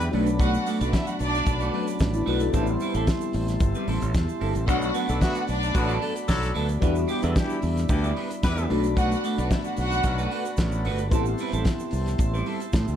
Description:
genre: disco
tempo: 112 BPM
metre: 4/4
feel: straight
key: unclear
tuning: A4 = 440 Hz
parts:
  - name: clean electric guitar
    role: accompaniment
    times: 0.0-12.9 s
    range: F#3 to D5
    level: -30 LUFS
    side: right 4 dB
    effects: phaser
  - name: tine electric piano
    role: accompaniment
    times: 0.0-13.0 s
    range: F#3 to A4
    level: -30 LUFS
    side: left 4 dB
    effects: phaser
  - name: mellow tonewheel organ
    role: sustained chords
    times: 0.0-13.0 s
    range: E4 to C6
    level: -34 LUFS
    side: right 2 dB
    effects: slow rotary speaker
  - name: warm horn section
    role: stabs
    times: 0.0-0.1, 4.9-8.6 s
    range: D3 to B4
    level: -31 LUFS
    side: equal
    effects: tube saturation
  - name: modern bright fingered electric bass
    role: bass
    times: 0.0-13.0 s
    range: G1 to A2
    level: -27 LUFS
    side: equal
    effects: none
  - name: tube shaker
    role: percussion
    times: 0.0-13.0 s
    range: none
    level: -47 LUFS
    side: right 9 dB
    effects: none
  - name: warm soul drum kit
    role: drums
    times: 0.1-12.9 s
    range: hi-hat, kick drum, snare drum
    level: -26 LUFS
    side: equal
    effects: none
  - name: warm studio violin section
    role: second line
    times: 0.4-10.3 s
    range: D4 to F#5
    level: -30 LUFS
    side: right 1 dB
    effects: tape echo
room: light reverb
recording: dark, warm production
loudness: -22 LUFS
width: side -10 dB against mid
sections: 0.0-13.0 A section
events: none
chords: 0.1 Bm7; 2.5 Am7; 4.7 Bm7; 6.8 Em7; 8.7 Bm7; 11.1 Am7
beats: | 0.39 0.93 1.46 2.00 | 2.54 3.07 3.61 4.14 | 4.68 5.21 5.75 6.29 | 6.82 7.36 7.90 8.43 | 8.97 9.51 10.04 10.58 | 11.12 11.66 12.19 12.73

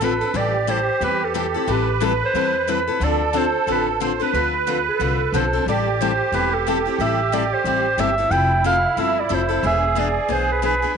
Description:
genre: acoustic string swing (jazz manouche)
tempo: 181 BPM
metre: 4/4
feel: swing 60% on 8ths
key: A minor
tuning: A4 = 443 Hz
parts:
  - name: breathy clarinet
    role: melody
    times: 0.0-10.9 s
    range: G4 to G5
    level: -22 LUFS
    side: right 1 dB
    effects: none
  - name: musette accordion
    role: second line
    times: 0.0-10.9 s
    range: E4 to C5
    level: -23 LUFS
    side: right 8 dB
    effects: none
  - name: picked steel-string acoustic guitar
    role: accompaniment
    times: 0.0-11.0 s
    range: D3 to A4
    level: -24 LUFS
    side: left 12 dB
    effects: none
  - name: upright bass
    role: bass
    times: 0.0-10.8 s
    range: E1 to E2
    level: -26 LUFS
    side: equal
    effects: none
room: wet spring reverb, RT60 1.9 s, small room ambience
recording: 1960s-style stereo with parts hard left and right, nothing above 11.0 kHz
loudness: -18 LUFS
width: side -6 dB against mid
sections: 0.0-11.0 A section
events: none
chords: 0.4 Am7; 3.0 Dm7; 5.7 Am7; 8.3 Fmaj7; 9.6 E7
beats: 0.02 | 0.35 0.68 1.02 1.35 | 1.68 2.01 2.34 2.67 | 3.01 3.34 3.67 4.00 | 4.33 4.67 5.00 5.33 | 5.66 5.99 6.32 6.66 | 6.99 7.32 7.65 7.98 | 8.31 8.64 8.97 9.30 | 9.64 9.97 10.30 10.63 | 10.96

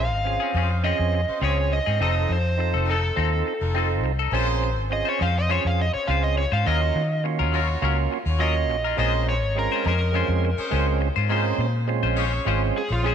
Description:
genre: blues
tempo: 103 BPM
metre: 4/4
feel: straight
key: Bb minor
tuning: A4 = 440 Hz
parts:
  - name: overdriven slide guitar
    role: melody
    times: 0.0-13.1 s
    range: F4 to F5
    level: -27 LUFS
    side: right 1 dB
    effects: none
  - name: percussive tonewheel organ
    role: accompaniment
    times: 0.0-13.1 s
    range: Ab3 to A4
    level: -28 LUFS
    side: right 11 dB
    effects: overdrive, chorus vibrato, stopped rotary speaker
  - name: clear horn section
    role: sustained chords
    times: 0.0-13.1 s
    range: Gb3 to F5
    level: -34 LUFS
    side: left 1 dB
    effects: none
  - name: vintage muted fingered electric bass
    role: bass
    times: 0.0-13.1 s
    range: F1 to Eb3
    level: -23 LUFS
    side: left 1 dB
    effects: none
  - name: clean electric guitar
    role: stabs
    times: 0.3-13.1 s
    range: F3 to C5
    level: -28 LUFS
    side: left 9 dB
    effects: none
room: moderate echo chamber reverb, RT60 2.6 s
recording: 1960s-style stereo with parts hard left and right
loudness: -20 LUFS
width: side -8 dB against mid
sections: 0.0-4.3 A section; 4.3-13.1 B section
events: electric slide guitar solo 4.3-13.1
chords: 0.0 Bbm9; 2.0 F7; 4.3 Bbm9; 6.7 Ebm9; 9.0 Bbm9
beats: 0.26 0.84 1.42 | 2.00 2.58 3.17 3.75 | 4.33 4.91 5.49 6.07 | 6.65 7.23 7.81 8.39 | 8.97 9.55 10.13 10.71 | 11.29 11.87 12.45 13.03

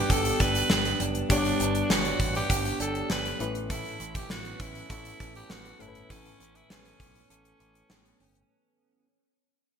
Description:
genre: 1980s-style pop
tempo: 100 BPM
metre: 4/4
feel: straight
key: A mixolydian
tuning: A4 = 440 Hz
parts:
  - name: raspy alto saxophone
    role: melody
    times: 0.0-8.2 s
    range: C#4 to B4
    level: -32 LUFS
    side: right 1 dB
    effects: none
  - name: FM electric piano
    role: accompaniment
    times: 0.0-8.5 s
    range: G2 to D5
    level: -33 LUFS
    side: left 4 dB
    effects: chorus
  - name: direct-recorded clean electric guitar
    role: riff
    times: 0.0-9.1 s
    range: E3 to A4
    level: -36 LUFS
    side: right 7 dB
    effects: analog chorus
  - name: picked electric bass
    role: bass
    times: 0.1-8.4 s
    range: F#1 to B1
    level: -35 LUFS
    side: equal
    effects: none
  - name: gated 80s drum kit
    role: drums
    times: 0.1-8.5 s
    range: hi-hat, kick drum, snare drum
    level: -28 LUFS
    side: equal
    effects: gated reverb
room: moderate lush hall reverb, RT60 2.2 s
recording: bright 1980s-style digital production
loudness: -24 LUFS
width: side -7 dB against mid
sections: 0.0-8.5 A section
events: fade-out 0.0-8.5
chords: 0.0 G; 3.4 Aadd9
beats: 0.10 0.70 | 1.30 1.90 2.50 3.10 | 3.70 4.30 4.90 5.50 | 6.10 6.70 7.30 7.90

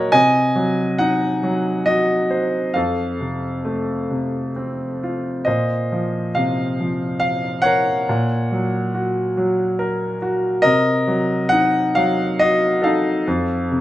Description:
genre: classical, lyrical solo piano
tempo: 68 BPM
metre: 3/4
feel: rubato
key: unclear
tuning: A4 = 440 Hz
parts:
  - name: clear baby grand piano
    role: solo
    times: 0.0-13.8 s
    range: F2 to Ab5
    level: -17 LUFS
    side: equal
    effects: none
room: light reverb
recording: nothing above 10.8 kHz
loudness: -17 LUFS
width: side -14 dB against mid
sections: 0.0-13.8 A section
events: none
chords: 0.1 Cdim; 2.8 F; 5.5 Bbsus2; 8.1 Gb/Bb; 10.6 Cm7b5; 13.3 F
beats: | 0.12 0.99 1.87 | 2.75 3.64 4.54 | 5.46 6.35 7.21 | 8.07 8.93 9.78 | 10.63 11.50 12.39 | 13.26

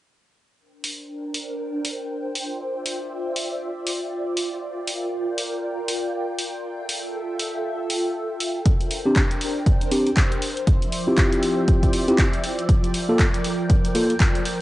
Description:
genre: deep house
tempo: 119 BPM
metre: 4/4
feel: swing 60% on 16ths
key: unclear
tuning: A4 = 440 Hz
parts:
  - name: soft string machine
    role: sustained chords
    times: 0.6-14.6 s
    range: F3 to G5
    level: -27 LUFS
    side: equal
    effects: phaser, ensemble chorus, sidechain pumping, cassette tape
  - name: punchy analog drum machine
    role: drums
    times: 0.8-14.6 s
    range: handclaps, hi-hat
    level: -27 LUFS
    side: equal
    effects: none
  - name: electronic kick drum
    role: drums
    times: 8.7-14.3 s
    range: none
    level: -19 LUFS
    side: equal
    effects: none
  - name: mellow tine electric piano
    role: stabs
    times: 9.1-14.1 s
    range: Bb3 to A4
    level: -22 LUFS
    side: equal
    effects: cassette tape, tape echo
room: moderate spring reverb, RT60 1.7 s, digital ambience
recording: home recording on cassette, nothing above 10.6 kHz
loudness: -20 LUFS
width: side -16 dB against mid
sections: 0.6-14.6 A section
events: filter sweep on string machine 0.6-14.6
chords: 0.6 Bb69; 2.4 Dm11; 4.6 Gm7; 6.6 Fmaj9; 8.7 Bb69; 10.4 Dm11; 12.7 Gm7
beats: | 0.59 1.09 1.60 2.10 | 2.60 3.11 3.61 4.12 | 4.62 5.13 5.63 6.13 | 6.64 7.14 7.65 8.15 | 8.66 9.16 9.66 10.17 | 10.67 11.18 11.68 12.19 | 12.69 13.19 13.70 14.20

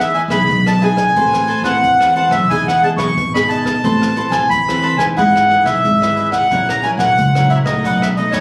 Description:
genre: samba and choro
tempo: 90 BPM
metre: 4/4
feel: straight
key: E major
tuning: A4 = 440 Hz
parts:
  - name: accordion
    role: melody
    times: 0.0-8.4 s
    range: C#5 to C#6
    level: -17 LUFS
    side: equal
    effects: none
  - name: cavaquinho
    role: accompaniment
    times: 0.0-8.4 s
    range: D#4 to A5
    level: -27 LUFS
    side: equal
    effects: none
  - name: nylon-string guitar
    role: accompaniment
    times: 0.0-8.4 s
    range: A#2 to B4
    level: -22 LUFS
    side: equal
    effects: none
  - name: upright bass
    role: bass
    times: 0.0-8.4 s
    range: E1 to F#2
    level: -23 LUFS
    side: equal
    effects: none
  - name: jazz brush drum kit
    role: drums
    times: 0.0-8.4 s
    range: hi-hat, kick drum, rim click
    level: -29 LUFS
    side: equal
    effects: none
room: moderate large studio reverb, RT60 0.9 s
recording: recorded on a phone in the room, club reverb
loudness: -14 LUFS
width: mono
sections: 0.0-8.4 A section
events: none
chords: 0.0 Emaj7; 1.2 Amadd9; 2.5 Emaj7; 3.8 Amadd9; 5.2 Emaj7/G#; 6.5 F#7/A#; 7.9 B7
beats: 0.49 1.16 1.83 | 2.50 3.17 3.84 4.51 | 5.18 5.84 6.51 7.18 | 7.85

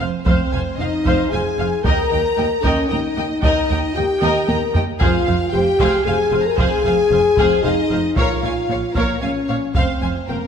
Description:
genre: cinematic, epic orchestral film score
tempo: 114 BPM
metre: 3/4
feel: straight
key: F minor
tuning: A4 = 440 Hz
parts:
  - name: warm symphonic violin section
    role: melody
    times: 0.0-10.5 s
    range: Bb4 to Bb5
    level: -29 LUFS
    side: left 3 dB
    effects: none
  - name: warm symphonic violin section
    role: second line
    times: 0.0-10.4 s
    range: Ab4 to Bb5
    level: -25 LUFS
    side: left 3 dB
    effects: none
  - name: rich symphonic viola section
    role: accompaniment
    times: 0.0-10.4 s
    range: C5 to G5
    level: -26 LUFS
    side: right 1 dB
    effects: none
  - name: dark French horn section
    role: sustained chords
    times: 0.0-10.5 s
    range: Bb3 to Bb4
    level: -19 LUFS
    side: left 2 dB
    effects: none
  - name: rich studio cello section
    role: bass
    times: 0.0-10.4 s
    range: Eb2 to Bb2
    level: -26 LUFS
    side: right 4 dB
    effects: none
  - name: rich symphonic double bass section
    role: bass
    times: 0.0-10.4 s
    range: F1 to Eb2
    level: -26 LUFS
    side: right 4 dB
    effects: none
  - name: solo taiko drums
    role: drums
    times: 0.3-10.2 s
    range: none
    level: -22 LUFS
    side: right 1 dB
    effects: none
room: moderate scoring stage reverb, RT60 2.0 s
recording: none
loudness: -15 LUFS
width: side -7 dB against mid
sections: 0.0-10.5 A section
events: drum fill 4.2-5.0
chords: 0.0 Fm; 1.8 Eb; 5.0 Fm; 8.2 Bbm; 9.8 F5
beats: | 0.26 0.79 1.32 | 1.85 2.38 2.90 | 3.43 3.96 4.49 | 5.01 5.54 6.06 | 6.59 7.11 7.64 | 8.17 8.69 9.22 | 9.75 10.29

